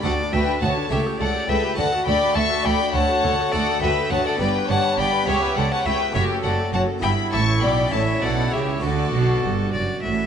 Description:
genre	classical, baroque-style concerto movement with solo episodes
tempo	68 BPM (dotted quarters)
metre	6/8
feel	straight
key	D major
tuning	A4 = 440 Hz
part	rich chamber violin section	melody	0.0-9.7 s	D5 to C#6	-27 LUFS	left 5 dB	none
part	rich violin	melody	0.0-10.3 s	A4 to A5	-26 LUFS	left 1 dB	none
part	warm studio violin section	second line	0.0-9.7 s	F#4 to E5	-26 LUFS	left 3 dB	none
part	harpsichord	accompaniment	0.0-10.3 s	C#2 to A4	-29 LUFS	equal	none
part	warm chamber viola section	accompaniment	0.0-10.3 s	D4 to D5	-29 LUFS	right 1 dB	none
part	rich chamber cello section	bass	0.0-10.3 s	C#2 to D3	-26 LUFS	right 3 dB	none
part	rich chamber double bass section	bass	0.0-10.3 s	F#1 to D2	-26 LUFS	right 3 dB	none
room	moderate scoring stage reverb, RT60 2.2 s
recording	nothing above 11.0 kHz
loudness	-18 LUFS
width	side -8 dB against mid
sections	0.0-10.3 A section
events	none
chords	0.0 D; 0.9 A7/C#; 1.8 D; 4.4 G; 5.3 A13/C#; 6.2 F#m; 7.0 Em/G; 7.9 A; 8.8 D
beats	| 0.04 0.91 | 1.78 2.65 | 3.53 4.40 | 5.28 6.15 | 7.03 7.92 | 8.83 9.74

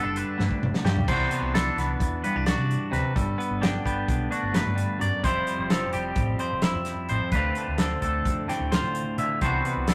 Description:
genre	math rock and midwest emo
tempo	259 BPM (eighths)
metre	9/8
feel	straight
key	G major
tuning	A4 = 440 Hz
part	twelve-string electric guitar	accompaniment	0.0-9.9 s	D2 to F#4	-31 LUFS	equal	none
part	twangy electric guitar	arpeggios	0.0-9.9 s	F#4 to E5	-32 LUFS	equal	spring reverb
part	fingered electric bass	bass	0.0-9.9 s	F1 to D3	-32 LUFS	equal	none
part	loose indie drum kit	drums	0.2-9.9 s	crash cymbal, hi-hat, kick drum, snare drum, toms	-30 LUFS	equal	none
room	moderate small room ambience, RT60 0.5 s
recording	rough rehearsal-room recording, warm saturation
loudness	-26 LUFS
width	mono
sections	0.0-1.1 A section; 1.1-9.9 B section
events	drum fill 0.4-1.1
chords	0.0 Gmaj9; 1.1 Cmaj9#11; 3.2 Gmaj7; 5.2 Fmaj9; 7.3 Dm7; 9.4 Cmaj9#11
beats	0.15 0.39 0.61 0.85 | 1.08 1.31 1.54 1.77 2.00 2.23 2.46 2.69 2.92 | 3.15 3.39 3.62 3.85 4.08 4.31 4.54 4.78 5.01 | 5.24 5.47 5.70 5.93 6.17 6.40 6.63 6.86 7.09 | 7.33 7.56 7.79 8.03 8.26 8.49 8.72 8.96 9.19 | 9.42 9.65 9.89

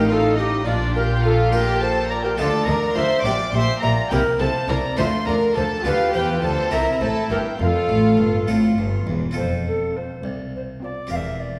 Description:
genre	classical, baroque-style concerto movement with solo episodes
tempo	69 BPM (dotted quarters)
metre	6/8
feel	straight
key	F major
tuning	A4 = 438 Hz
part	mellow alto recorder	melody	0.0-11.6 s	F4 to G5	-26 LUFS	equal	none
part	rich chamber violin section	melody	0.0-11.0 s	D5 to D6	-29 LUFS	equal	none
part	warm chamber violin section	second line	0.0-11.0 s	D4 to D5	-28 LUFS	equal	none
part	dark chamber viola section	accompaniment	0.0-11.0 s	C4 to G4	-32 LUFS	equal	none
part	harpsichord	accompaniment	0.0-11.6 s	C2 to Bb4	-30 LUFS	equal	none
part	dark studio double bass section	bass	0.0-11.6 s	E1 to E2	-29 LUFS	equal	none
part	warm chamber cello section	bass	0.0-11.6 s	C2 to E3	-27 LUFS	equal	none
room	wet recital hall reverb, RT60 1.3 s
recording	heard from further back in the room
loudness	-20 LUFS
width	mono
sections	0.0-9.4 A section; 9.4-11.6 B section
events	none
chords	0.0 F7/A; 0.7 Bb; 2.4 Dm; 3.2 Gm/Bb; 4.1 C7; 5.0 Dm; 5.8 G7/D; 6.7 C; 7.6 F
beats	| 0.66 1.52 | 2.38 3.25 | 4.11 4.98 | 5.84 6.72 | 7.60 8.48 | 9.37 10.24 | 11.11

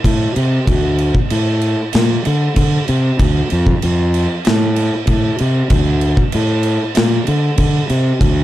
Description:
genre	stoner and doom metal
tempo	96 BPM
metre	4/4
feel	straight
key	D minor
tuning	A4 = 440 Hz
part	fuzz fingered electric bass	bass	0.0-8.4 s	D2 to D3	-15 LUFS	equal	overdrive
part	big rock drum kit	drums	0.0-8.4 s	crash cymbal, kick drum, snare drum	-17 LUFS	equal	none
room	little or no reverb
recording	dark, warm production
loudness	-13 LUFS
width	side -14 dB against mid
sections	0.0-8.4 A section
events	none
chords	none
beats	0.05 | 0.68 1.31 1.95 2.58 | 3.21 3.83 4.46 5.09 | 5.72 6.34 6.97 7.59 | 8.22

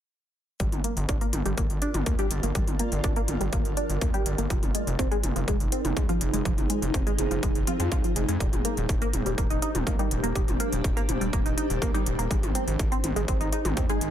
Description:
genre	melodic techno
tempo	123 BPM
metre	4/4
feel	straight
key	G phrygian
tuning	A4 = 440 Hz
part	tight sequenced synth	arpeggios	0.6-14.0 s	F3 to F4	-32 LUFS	equal	chorus, phaser, sidechain pumping, ping-pong delay
part	gritty driven synth bass	bass	0.6-14.1 s	Eb1 to F2	-30 LUFS	equal	tube saturation, sidechain pumping
part	electronic kick drum	drums	0.6-13.9 s	none	-27 LUFS	equal	distortion
part	techno drum kit	drums	0.6-14.1 s	hi-hat, toms	-33 LUFS	left 2 dB	none
part	granular cloud pad	texture	1.3-14.1 s	D4 to D5	-34 LUFS	right 2 dB	built-in reverb, sidechain pumping
part	filtered dub chord stab	stabs	2.2-14.0 s	Eb3 to Ab4	-35 LUFS	left 1 dB	phaser, wide subtle chorus, sidechain pumping, ping-pong delay
room	light reverb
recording	dense, heavily limited modern master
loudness	-24 LUFS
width	side -10 dB against mid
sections	0.6-14.1 A section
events	none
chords	0.6 Gm; 4.5 Fm; 8.4 Eb; 12.3 Ab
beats	| 0.60 1.09 1.58 2.06 | 2.55 3.04 3.53 4.01 | 4.50 4.99 5.48 5.97 | 6.45 6.94 7.43 7.92 | 8.40 8.89 9.38 9.87 | 10.36 10.84 11.33 11.82 | 12.31 12.79 13.28 13.77

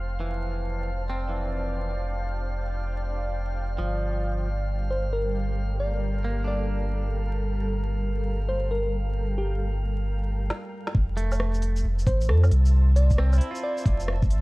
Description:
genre	future garage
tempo	134 BPM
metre	4/4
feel	swing 65% on 16ths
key	unclear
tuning	A4 = 442 Hz
part	granular cloud pad	sustained chords	0.0-14.4 s	G3 to A5	-35 LUFS	equal	built-in reverb, sidechain pumping
part	warm sub bass	bass	0.0-14.4 s	F1 to F2	-25 LUFS	equal	sidechain pumping
part	drifting glass-harmonics texture	texture	0.0-10.5 s	F5	-43 LUFS	right 2 dB	chorus, built-in reverb
part	direct-recorded clean electric guitar	accompaniment	0.2-7.1, 11.2-14.2 s	E3 to F4	-35 LUFS	right 1 dB	sidechain pumping, analog delay
part	bell-like FM electric piano	melody	4.9-14.0 s	G4 to D5	-32 LUFS	equal	chorus, analog delay
part	organic electronic drum kit	drums	10.5-14.4 s	hi-hat, rim click, shaker, snare drum, woodblock	-34 LUFS	equal	overdrive, small room ambience
part	electronic kick drum	drums	10.9-14.3 s	none	-22 LUFS	equal	overdrive, small room ambience
room	little or no reverb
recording	vinyl crackle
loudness	-24 LUFS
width	side -22 dB against mid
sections	0.0-10.9 A section; 10.9-14.4 B section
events	filter sweep on ambient pad 0.0-10.9; break 10.5-10.9; drum fill 10.5-10.9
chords	0.0 Fmaj7; 3.8 Gm7; 10.9 Fmaj7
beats	| 0.20 0.65 1.10 1.54 | 1.99 2.44 2.89 3.33 | 3.78 4.23 4.68 5.13 | 5.57 6.02 6.47 6.92 | 7.37 7.81 8.26 8.71 | 9.16 9.60 10.05 10.50 | 10.95 11.39 11.84 12.29 | 12.74 13.19 13.63 14.08

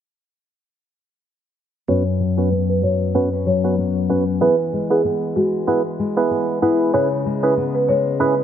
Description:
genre	dancehall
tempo	95 BPM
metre	4/4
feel	swing 56% on 16ths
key	unclear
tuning	A4 = 440 Hz
part	marimba with medium mallets	melody	1.9-8.3 s	E4 to C#5	-20 LUFS	equal	low-pass filter, ping-pong delay
part	percussive organ stab	accompaniment	1.9-8.3 s	B3 to B4	-21 LUFS	right 3 dB	chorus, low-pass filter
part	nylon-string guitar	arpeggios	1.9-8.4 s	F#2 to E4	-21 LUFS	left 4 dB	low-pass filter, ping-pong delay
room	light reverb, small room ambience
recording	none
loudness	-16 LUFS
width	side -9 dB against mid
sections	1.9-8.4 A section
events	filter sweep 1.9-8.4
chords	1.9 F#sus4; 4.4 E; 6.9 C#m7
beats	| 1.89 2.52 3.15 3.78 | 4.41 5.04 5.67 6.31 | 6.94 7.57 8.20

